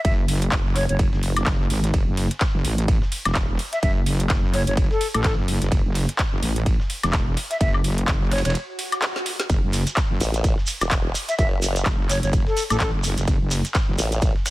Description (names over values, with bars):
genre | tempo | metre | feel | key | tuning
bass house | 127 BPM | 4/4 | swing 58% on 16ths | F# minor | A4 = 441 Hz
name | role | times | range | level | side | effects
silver concert flute | melody | 0.0-12.9 s | A4 to E5 | -27 LUFS | left 1 dB | ping-pong delay
wobble bass | bass | 0.0-14.0 s | E1 to A1 | -23 LUFS | equal | chorus, overdrive, sidechain pumping
dusty soul sampler-style drum kit | drums | 0.0-14.5 s | ride cymbal, snare drum | -36 LUFS | right 3 dB | sidechain pumping on cymbals, high-pass filter on cymbals, high-pass filter on snare
electronic kick drum | drums | 0.0-14.3 s | none | -22 LUFS | equal | none
garage drum kit | drums | 0.0-14.5 s | handclaps, hi-hat, snare drum, woodblock | -27 LUFS | left 1 dB | none
swell | sound effects | 8.7-9.5 s | none | -33 LUFS | right 1 dB | none
shekere | percussion | 9.5-14.5 s | none | -30 LUFS | right 2 dB | none
formant-sweep wobble bass | bass | 10.2-14.3 s | E1 to A1 | -23 LUFS | equal | chorus, sidechain pumping
room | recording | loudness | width
little or no reverb | none | -19 LUFS | side -18 dB against mid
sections
0.0-14.5 A section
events
break 8.6-9.5; swell 8.7-9.5; drum fill 9.0-9.5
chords
none